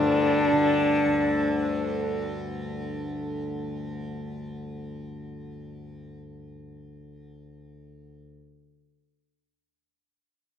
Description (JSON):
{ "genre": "indian classical", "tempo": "114 BPM", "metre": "4/4", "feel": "straight", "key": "unclear", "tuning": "A4 = 441 Hz", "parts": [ { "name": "dark sarangi", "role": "melody", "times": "0.0-2.3 s", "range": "D4", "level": "-23 LUFS", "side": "left 2 dB", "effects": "none" }, { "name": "tanpura", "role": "drone", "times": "0.0-8.2 s", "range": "D2 to D3", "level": "-30 LUFS", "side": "equal", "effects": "none" } ], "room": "moderate recital hall reverb, RT60 1.7 s", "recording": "none", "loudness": "-24 LUFS", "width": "side -9 dB against mid", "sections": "0.0-1.6 A section", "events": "none", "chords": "none" }